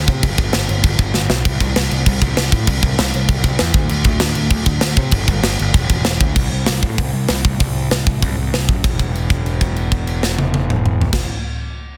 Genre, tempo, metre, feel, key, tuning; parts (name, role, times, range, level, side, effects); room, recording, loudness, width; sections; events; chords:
punk rock; 195 BPM; 4/4; straight; A4 = 443 Hz
fuzz picked electric bass; bass; 0.0-11.3 s; E1 to C3; -22 LUFS; equal; overdrive
tight metal drum kit; drums; 0.1-11.2 s; crash cymbal, hi-hat, kick drum, snare drum, toms; -19 LUFS; equal; soft clipping on kick
little or no reverb; dense, heavily limited modern master; -17 LUFS; mono
0.0-6.4 A section; 6.4-8.8 B section; 8.8-11.3 C section
drum fill 1.1-1.5; held note 8.8-11.1